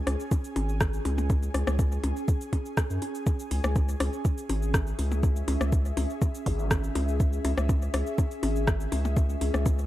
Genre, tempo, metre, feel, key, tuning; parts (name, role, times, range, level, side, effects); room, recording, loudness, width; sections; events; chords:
minimal techno; 122 BPM; 4/4; straight; C# minor; A4 = 440 Hz
ethereal airy pad; texture; 0.0-9.9 s; C#4 to G#5; -35 LUFS; left 1 dB; ensemble chorus, built-in reverb, sidechain pumping
saturated sub bass; bass; 0.1-9.8 s; G#1 to F#2; -28 LUFS; equal; sidechain pumping
booming analog drum machine; drums; 0.1-9.9 s; hi-hat, rim click, shaker; -36 LUFS; right 1 dB
electronic rim click and percussion blips; percussion; 0.1-9.8 s; -33 LUFS; left 3 dB; overdrive, tape echo
electronic kick drum; drums; 0.3-9.8 s; -25 LUFS; equal
zap; sound effects; 6.5-6.6 s; -40 LUFS; equal
light reverb, digital ambience; dry, gritty hardware recording; -25 LUFS; side -15 dB against mid
0.0-9.9 A section
0.0 C#m